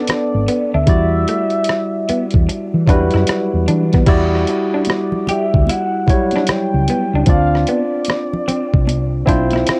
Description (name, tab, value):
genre	R&B, neo-soul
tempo	75 BPM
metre	4/4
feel	swing 64% on 16ths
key	unclear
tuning	A4 = 439 Hz
part	mellow horn-like synth lead	melody	0.0-9.8 s	D5 to G5	-24 LUFS	equal	chorus, phaser, cassette tape
part	electric guitar through a small old amp	second line	0.0-9.7 s	A3 to G4	-27 LUFS	equal	spring reverb, cassette tape
part	barky tine electric piano	accompaniment	0.0-9.8 s	F#3 to D5	-21 LUFS	equal	cassette tape
part	woody fretless electric bass	bass	0.1-9.7 s	G#1 to E3	-19 LUFS	equal	none
part	dusty soul sampler-style drum kit	drums	0.1-9.8 s	crash cymbal, hi-hat, kick drum, rim click	-19 LUFS	equal	cassette tape
part	congas	percussion	4.1-9.7 s	none	-29 LUFS	equal	none
room	light reverb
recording	home recording on cassette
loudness	-16 LUFS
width	mono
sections	0.0-4.1 A section; 4.1-9.8 A section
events	none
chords	0.0 Bm9; 0.9 Em9; 7.3 Dm9